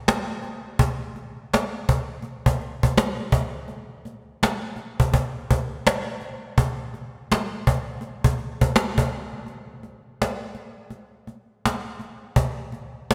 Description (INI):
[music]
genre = R&B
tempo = 83 BPM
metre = 4/4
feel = swing 61% on 16ths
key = none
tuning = none
[part]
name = cajon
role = drums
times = 0.1-13.1 s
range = none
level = -25 LUFS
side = equal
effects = none
[sound]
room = moderate lush hall reverb, RT60 2.5 s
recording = bright 1980s-style digital production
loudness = -25 LUFS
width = mono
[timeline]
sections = 0.0-9.5 A section; 9.5-13.1 B section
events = none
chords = none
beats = 0.07 | 0.79 1.52 2.24 2.96 | 3.69 4.41 5.13 5.85 | 6.58 7.30 8.02 8.74 | 9.47 10.19 10.91 11.64 | 12.36 13.08